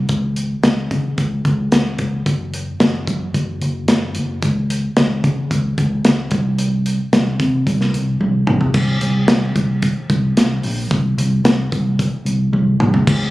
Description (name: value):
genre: piano-driven pop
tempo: 111 BPM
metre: 4/4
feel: straight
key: unclear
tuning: A4 = 440 Hz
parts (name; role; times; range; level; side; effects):
- vintage muted fingered electric bass; bass; 0.0-13.3 s; Gb1 to Db3; -18 LUFS; equal; none
- modern studio drum kit; drums; 0.1-13.2 s; crash cymbal, hi-hat, kick drum, snare drum, toms; -18 LUFS; equal; none
room: light reverb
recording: recorded on a phone in the room, studio ambience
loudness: -15 LUFS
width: side -18 dB against mid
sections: 0.0-8.8 A section; 8.8-13.1 B section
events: drum fill 8.2-8.8, 12.5-13.1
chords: none